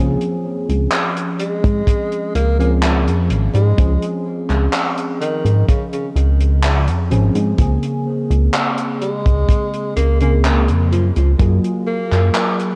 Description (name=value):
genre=vaporwave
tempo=63 BPM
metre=4/4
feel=straight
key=Db major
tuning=A4 = 440 Hz
part: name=mellow FM electric piano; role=accompaniment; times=0.0-12.8 s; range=Db3 to Ab4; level=-24 LUFS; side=equal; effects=lush chorus, analog delay
part: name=chorused synth bass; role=bass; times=0.0-12.3 s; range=Ab1 to Ab2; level=-17 LUFS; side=equal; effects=none
part: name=damped 70s drum kit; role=drums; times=0.2-12.8 s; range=handclaps, hi-hat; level=-24 LUFS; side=equal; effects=studio reverb
part: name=breathy tenor saxophone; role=melody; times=1.4-12.4 s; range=Db3 to Bb3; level=-26 LUFS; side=equal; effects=tape echo
part: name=kick drum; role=drums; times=1.6-11.6 s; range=none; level=-18 LUFS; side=equal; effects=studio reverb
room=moderate plate reverb, RT60 2.6 s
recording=dreamy mix soaked in reverb, cassette tape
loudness=-17 LUFS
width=mono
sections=0.0-12.8 A section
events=none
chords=0.0 Dbmaj7; 7.6 Bbm9/Db; 10.9 Gbmaj9